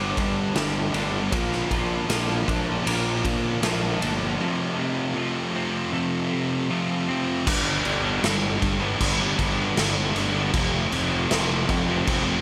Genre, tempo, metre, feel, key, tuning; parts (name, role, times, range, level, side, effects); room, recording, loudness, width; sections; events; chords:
quiet-loud alternative rock; 78 BPM; 4/4; straight; A4 = 441 Hz
twelve-string electric guitar; arpeggios; 0.0-7.5 s; F2 to D4; -34 LUFS; equal; lush chorus, tape echo
thick fuzz guitar; riff; 0.0-12.4 s; F2 to D4; -28 LUFS; equal; distortion
fuzz fingered electric bass; bass; 0.0-12.4 s; F1 to Bb2; -32 LUFS; equal; overdrive
raw garage drum kit; drums; 0.2-12.3 s; crash cymbal, kick drum, ride cymbal, snare drum; -28 LUFS; equal
light reverb, studio reverb; -24 LUFS; mono
0.0-7.5 A section; 7.5-12.4 B section
0.0 G; 1.3 Bb; 4.4 F; 7.5 G; 10.5 F